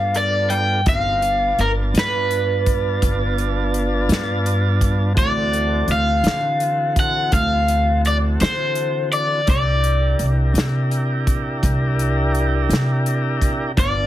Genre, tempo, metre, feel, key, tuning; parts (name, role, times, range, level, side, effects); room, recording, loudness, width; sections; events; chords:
slow blues; 56 BPM (dotted quarters); 12/8; straight; G mixolydian; A4 = 439 Hz
overdriven semi-hollow guitar; melody; 0.0-14.1 s; Bb4 to G5; -20 LUFS; left 1 dB
tonewheel organ; sustained chords; 0.0-14.1 s; E3 to A5; -25 LUFS; right 1 dB; slow rotary speaker
upright bass; bass; 0.0-14.1 s; G1 to D3; -20 LUFS; equal
natural country drum kit; drums; 0.1-13.9 s; hi-hat, kick drum, snare drum; -21 LUFS; equal
light reverb; heavily compressed radio sound; -16 LUFS; side -13 dB against mid
0.0-14.1 A section
0.0 G9; 5.2 D9; 9.5 C9